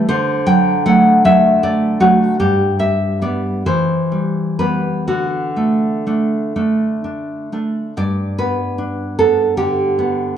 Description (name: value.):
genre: romantic piece for solo classical guitar.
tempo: 40-53 BPM (dotted quarters).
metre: 6/8.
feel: rubato.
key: G major.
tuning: A4 = 440 Hz.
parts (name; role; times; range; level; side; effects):
nylon-string guitar; solo; 0.0-10.4 s; G2 to G5; -14 LUFS; equal; none.
room: wet recital hall reverb, RT60 1.6 s.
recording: dark, warm production.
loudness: -14 LUFS.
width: side -9 dB against mid.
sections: 0.0-8.0 A section; 8.0-10.4 B section.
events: none.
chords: 0.1 D; 2.4 G; 3.7 Em; 5.1 D; 8.0 G.